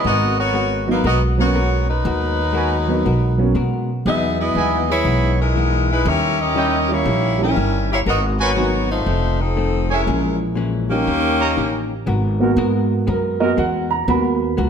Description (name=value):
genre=jazz, big band swing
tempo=120 BPM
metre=4/4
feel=swing 66% on 8ths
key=G# minor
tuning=A4 = 440 Hz
part: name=clear saxophone section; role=melody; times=0.0-11.9 s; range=D#3 to E5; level=-20 LUFS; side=left 1 dB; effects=none
part: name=hollow-body jazz guitar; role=accompaniment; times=0.0-14.7 s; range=F2 to A#4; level=-26 LUFS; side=left 5 dB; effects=none
part: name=upright bass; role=bass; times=0.0-14.7 s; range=F1 to B2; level=-21 LUFS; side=right 1 dB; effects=none
part: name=warm upright piano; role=accompaniment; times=0.9-14.7 s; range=F#3 to B5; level=-21 LUFS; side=right 2 dB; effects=none
part: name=warm trumpet section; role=stabs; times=2.5-11.5 s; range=E4 to A#5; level=-25 LUFS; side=right 3 dB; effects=none
part: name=warm trombone section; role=sustained chords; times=12.4-13.5 s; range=G#3 to A#4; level=-29 LUFS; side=right 5 dB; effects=none
room=moderate large studio reverb, RT60 1.4 s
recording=none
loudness=-16 LUFS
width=side -7 dB against mid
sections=0.0-12.1 A section; 12.1-14.7 B section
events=upright piano solo 12.1-14.7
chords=0.0 G#m9; 4.1 Emaj7; 6.1 D#7b9; 8.1 G#m9; 9.1 F7; 10.1 A#m7b5; 11.1 D#7; 12.1 G#m9